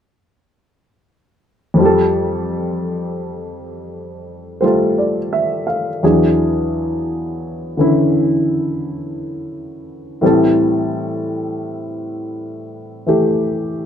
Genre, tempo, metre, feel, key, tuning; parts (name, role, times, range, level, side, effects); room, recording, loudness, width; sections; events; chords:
jazz; 57 BPM; 4/4; swing 68% on 8ths; F major; A4 = 439 Hz
warm baby grand piano; accompaniment; 1.7-13.9 s; E2 to F5; -16 LUFS; equal
moderate club reverb, RT60 0.8 s; -15 LUFS; side -9 dB against mid
1.8-13.9 A section
1.8 Fadd9; 6.0 E7; 10.2 Am7